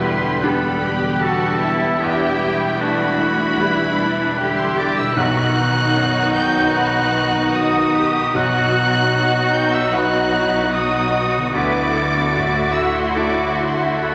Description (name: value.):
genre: cinematic, emotional film score for orchestra.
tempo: 76 BPM.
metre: 4/4.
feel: rubato.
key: unclear.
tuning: A4 = 440 Hz.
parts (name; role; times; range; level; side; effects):
warm symphonic violin section; melody; 0.0-14.1 s; G5 to G6; -29 LUFS; equal; none.
clear oboe; second line; 0.0-14.1 s; G4 to G5; -25 LUFS; equal; none.
warm symphonic violin section; second line; 0.0-14.1 s; D4 to G4; -24 LUFS; equal; none.
bright baby grand piano; accompaniment; 0.0-14.1 s; B1 to F#5; -27 LUFS; equal; none.
rich symphonic viola section; accompaniment; 0.0-14.1 s; D3 to B3; -28 LUFS; equal; none.
dark French horn section; sustained chords; 0.0-14.1 s; D#3 to D#5; -28 LUFS; equal; none.
concert harp; arpeggios; 0.0-14.1 s; E2 to D#5; -32 LUFS; equal; none.
rich symphonic cello section; bass; 0.0-14.1 s; D#4 to B4; -27 LUFS; equal; none.
rich symphonic double bass section; bass; 0.0-14.1 s; E1 to D2; -31 LUFS; equal; none.
room: wet concert hall reverb, RT60 1.9 s.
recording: none.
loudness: -18 LUFS.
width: mono.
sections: 0.0-14.1 A section.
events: none.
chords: 0.0 Em7; 5.2 B; 11.5 Dadd9.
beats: 0.42 1.22 | 2.01 2.80 3.58 4.38 | 5.16 5.95 6.75 7.55 | 8.35 9.15 9.95 10.74 | 11.54 12.35 13.16 13.98.